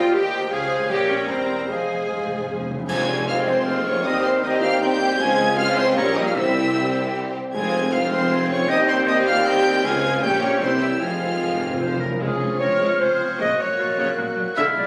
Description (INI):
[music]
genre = classical, dramatic, fast romantic movement for symphony orchestra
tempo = 154 BPM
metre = 3/4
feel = straight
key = F minor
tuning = A4 = 440 Hz
[part]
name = warm symphonic violin section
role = melody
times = 0.0-14.9 s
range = C5 to Ab6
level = -34 LUFS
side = equal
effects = none
[part]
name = silver concert flute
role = second line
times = 0.0-14.9 s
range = C5 to Gb6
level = -28 LUFS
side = equal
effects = none
[part]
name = warm clarinet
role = second line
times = 0.0-14.9 s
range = Bb3 to E5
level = -30 LUFS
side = equal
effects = none
[part]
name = warm oboe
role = second line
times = 0.0-14.9 s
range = E4 to Bb5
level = -31 LUFS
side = equal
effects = none
[part]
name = warm studio violin section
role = second line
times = 0.0-14.9 s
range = F4 to Bb5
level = -31 LUFS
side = equal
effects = none
[part]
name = dark bassoon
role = accompaniment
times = 0.0-14.9 s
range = Eb3 to C4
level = -32 LUFS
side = equal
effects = none
[part]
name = rich symphonic viola section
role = accompaniment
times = 0.0-14.9 s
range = Db3 to Ab4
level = -29 LUFS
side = equal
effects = none
[part]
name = mellow French horn section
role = sustained chords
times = 0.0-14.9 s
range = F3 to Ab4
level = -32 LUFS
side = equal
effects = none
[part]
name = clear symphonic double bass section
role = bass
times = 0.0-14.9 s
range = E1 to Eb2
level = -38 LUFS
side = equal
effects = none
[part]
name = rich symphonic cello section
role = bass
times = 0.0-14.9 s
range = C2 to C3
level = -34 LUFS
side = equal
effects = none
[part]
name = timpani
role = percussion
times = 1.7-2.9, 6.4-8.1, 11.0-12.2 s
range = F2 to C3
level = -36 LUFS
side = equal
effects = none
[part]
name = clear tuba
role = bass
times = 2.9-12.0 s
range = F1 to Eb2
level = -30 LUFS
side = equal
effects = none
[part]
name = clash cymbals and concert bass drum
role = percussion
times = 2.9-3.6 s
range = none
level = -37 LUFS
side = equal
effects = none
[sound]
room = moderate scoring stage reverb, RT60 1.8 s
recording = recorded on a phone in the room, club reverb, compression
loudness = -21 LUFS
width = mono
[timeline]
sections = 0.0-2.9 A section; 2.9-12.2 B section; 12.2-14.9 C section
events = timpani fill 1.7-2.9, 11.0-12.2; band accent 2.9-3.3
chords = 0.0 Cm/Eb; 0.5 Dbmaj7; 0.9 Gdim/Bb; 1.3 C7/E; 1.7 Fm; 4.1 Cm/Eb; 5.2 Dbmaj7; 6.0 Gdim/Bb; 6.4 C; 7.5 Fm; 8.7 Cm/Eb; 9.9 Dbmaj7; 10.2 Gdim/Bb; 10.6 C; 11.0 Fm; 12.2 Dbmaj7; 13.4 Gb/Bb